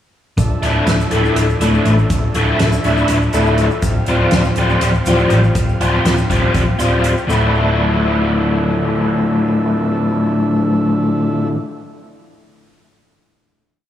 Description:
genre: psychedelic rock.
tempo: 243 BPM (eighths).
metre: 7/8.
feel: straight.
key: D minor.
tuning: A4 = 438 Hz.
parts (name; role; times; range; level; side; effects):
combo organ; sustained chords; 0.4-11.5 s; F3 to F5; -26 LUFS; right 2 dB; none.
hollow-body short-scale picked electric bass; bass; 0.4-11.5 s; D1 to A1; -18 LUFS; equal; none.
soft-mallet drum kit; drums; 0.4-7.2 s; hi-hat, kick drum, snare drum; -21 LUFS; right 1 dB; none.
tube shaker; percussion; 0.4-7.5 s; none; -37 LUFS; left 5 dB; dub echo.
crunchy overdriven guitar; riff; 0.6-11.6 s; D2 to F4; -15 LUFS; left 1 dB; rotary speaker, dub echo.
room: light reverb, studio reverb.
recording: echo-heavy mix, studio ambience.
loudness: -13 LUFS.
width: side -11 dB against mid.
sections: 0.4-7.3 groove; 7.3-10.7 final chord.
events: none.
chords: 0.4 Dmadd9; 3.8 Fsus2/D; 7.3 Dmadd9.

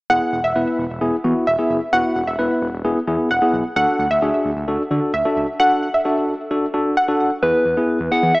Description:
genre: synth-pop.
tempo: 131 BPM.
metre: 4/4.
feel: straight.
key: E major.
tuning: A4 = 440 Hz.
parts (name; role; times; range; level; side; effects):
analog pluck; second line; 0.1-7.3 s; E5 to F#5; -19 LUFS; equal; chorus, tape echo.
tine electric piano; accompaniment; 0.1-8.3 s; B3 to B4; -20 LUFS; left 1 dB; medium stereo tremolo.
smooth synth bass; bass; 0.1-8.3 s; E1 to E3; -26 LUFS; equal; none.
soft struck synth lead; melody; 7.4-8.4 s; B4 to F#5; -16 LUFS; equal; chorus.
room: moderate lush hall reverb, RT60 2.5 s.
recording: small speaker sound.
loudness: -16 LUFS.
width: side -23 dB against mid.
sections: 0.1-7.4 A section.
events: none.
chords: 0.1 Eadd9; 3.8 D; 7.4 E.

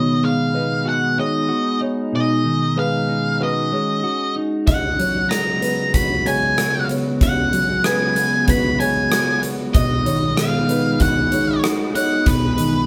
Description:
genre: post-rock.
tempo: 95 BPM.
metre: 4/4.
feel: straight.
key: B lydian.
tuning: A4 = 439 Hz.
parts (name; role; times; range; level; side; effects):
octave-fuzz lead guitar; melody; 0.0-12.9 s; B4 to B5; -23 LUFS; equal; distortion.
evolving wavetable pad; sustained chords; 0.0-12.9 s; C#3 to F#4; -28 LUFS; equal; chorus, built-in reverb.
clean electric guitar; arpeggios; 0.0-12.9 s; B2 to F#4; -24 LUFS; equal; none.
felt-muted upright piano; arpeggios; 0.0-12.6 s; B4 to D#5; -32 LUFS; equal; none.
huge arena drum kit; drums; 4.7-12.7 s; hi-hat, kick drum, rim click; -24 LUFS; equal; none.
room: wet studio reverb, RT60 0.6 s.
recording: band playing live in one room.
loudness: -19 LUFS.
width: mono.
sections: 0.0-12.9 A section.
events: none.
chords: 0.0 B6; 4.7 C#7sus4; 9.7 B6.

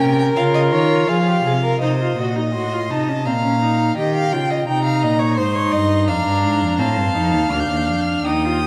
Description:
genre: classical, baroque-style fugue for string quartet.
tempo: 84 BPM.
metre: 3/4.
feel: straight.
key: unclear.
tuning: A4 = 440 Hz.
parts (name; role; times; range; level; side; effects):
rich violin; melody; 0.0-8.7 s; Db5 to G6; -26 LUFS; equal; none.
rich violin; second line; 0.0-8.7 s; G4 to G5; -25 LUFS; equal; none.
rich viola; accompaniment; 0.0-8.7 s; C4 to G4; -24 LUFS; equal; none.
rich cello; bass; 0.0-8.7 s; D2 to F3; -23 LUFS; equal; none.
room: wet recital hall reverb, RT60 1.7 s.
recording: none.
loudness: -18 LUFS.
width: mono.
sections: 0.0-1.8 A section; 1.8-8.7 B section.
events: none.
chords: 0.0 Bbm; 1.1 Fm; 1.8 F7; 3.3 Bbm; 4.0 Eb7; 5.4 Ab; 6.1 Fm; 6.8 F7; 7.5 Dmadd11.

